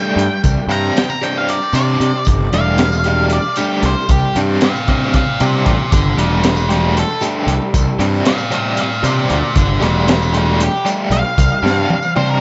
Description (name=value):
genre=psychedelic rock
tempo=230 BPM (eighths)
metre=7/8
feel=straight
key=unclear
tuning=A4 = 440 Hz
part: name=octave-fuzz lead guitar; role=melody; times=0.0-12.4 s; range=G4 to Bb5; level=-21 LUFS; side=equal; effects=distortion, dub echo
part: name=crunchy overdriven guitar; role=riff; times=0.0-12.4 s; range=G3 to G4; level=-22 LUFS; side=equal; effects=tremolo, dub echo
part: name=fuzz picked electric bass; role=bass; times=0.2-11.8 s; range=E1 to C3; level=-19 LUFS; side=equal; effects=overdrive
part: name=crunchy breakbeat drum kit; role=drums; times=0.2-12.3 s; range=hi-hat, kick drum, snare drum, toms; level=-21 LUFS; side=equal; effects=dub echo
part: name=tambourine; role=percussion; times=0.4-12.4 s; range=none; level=-38 LUFS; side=equal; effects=none
room=light reverb, small room ambience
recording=echo-heavy mix, nothing above 7.8 kHz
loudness=-15 LUFS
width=mono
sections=0.0-12.4 A section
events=lead electric guitar solo 0.0-12.4; drum fill 11.6-12.4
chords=0.4 Csus2; 2.3 Gsus2; 4.1 Csus2; 5.9 Gsus2; 7.7 Csus2; 9.6 Gsus2; 11.4 Csus2